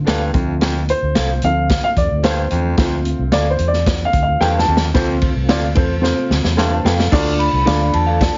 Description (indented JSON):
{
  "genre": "uptempo 1960s-style soul",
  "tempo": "111 BPM",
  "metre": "4/4",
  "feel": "straight",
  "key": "unclear",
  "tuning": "A4 = 440 Hz",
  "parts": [
    { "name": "dark upright piano", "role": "accompaniment", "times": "0.0-8.4 s", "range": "F3 to C6", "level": "-22 LUFS", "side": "equal", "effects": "none" },
    { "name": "percussive tonewheel organ", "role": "sustained chords", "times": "0.0-8.4 s", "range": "C3 to F4", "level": "-32 LUFS", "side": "equal", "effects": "none" },
    { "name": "vintage muted fingered electric bass", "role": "bass", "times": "0.0-8.3 s", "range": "C2 to F2", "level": "-22 LUFS", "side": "equal", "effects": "none" },
    { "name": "raspy baritone saxophone", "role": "riff", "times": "0.1-7.3 s", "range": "D2 to G2", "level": "-26 LUFS", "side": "equal", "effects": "none" },
    { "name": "electric guitar through a small old amp", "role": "stabs", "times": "0.1-8.2 s", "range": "A4 to F5", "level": "-26 LUFS", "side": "equal", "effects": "none" },
    { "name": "vintage drum kit", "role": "drums", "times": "0.1-8.3 s", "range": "crash cymbal, hi-hat, kick drum, ride cymbal, snare drum", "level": "-22 LUFS", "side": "equal", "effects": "none" },
    { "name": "vibraphone with medium mallets", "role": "melody", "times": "7.4-8.4 s", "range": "A5 to B5", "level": "-21 LUFS", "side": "equal", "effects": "none" }
  ],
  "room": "little or no reverb",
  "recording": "heavily compressed radio sound, nothing above 7.4 kHz",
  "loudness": "-17 LUFS",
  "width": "mono",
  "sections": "0.0-5.0 A section; 5.0-7.1 B section; 7.1-8.4 C section",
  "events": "upright piano solo 0.0-5.0; drum fill 4.4-5.0, 6.0-7.1",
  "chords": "0.3 F; 7.1 Dm"
}